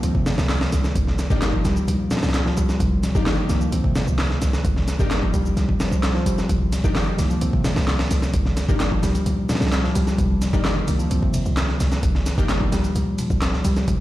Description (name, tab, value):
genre	breakbeat, breaks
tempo	130 BPM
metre	4/4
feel	straight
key	C minor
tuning	A4 = 440 Hz
part	mellow reed electric piano	riff	0.0-14.0 s	Bb2 to C4	-24 LUFS	equal	tape echo
part	orchestra-hit-like synth stab	stabs	0.0-14.0 s	Bb3 to G4	-30 LUFS	left 2 dB	built-in reverb, tape echo
part	warm 808-style bass	bass	0.0-14.0 s	G1 to C2	-22 LUFS	equal	none
part	breakbeat sampler-style drum kit	drums	0.0-14.0 s	hi-hat, kick drum, snare drum	-24 LUFS	equal	studio reverb
part	punchy analog drum machine	drums	0.0-14.0 s	handclaps, ride cymbal, shaker	-33 LUFS	equal	studio reverb
part	congas	percussion	0.3-13.3 s	none	-33 LUFS	left 2 dB	none
part	swell	sound effects	5.7-6.5 s	none	-34 LUFS	right 6 dB	none
room	light reverb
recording	played on a big sound system in a bare room, large studio reverb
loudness	-18 LUFS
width	side -15 dB against mid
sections	0.0-14.0 A section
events	swell 5.7-6.5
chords	0.0 Cm9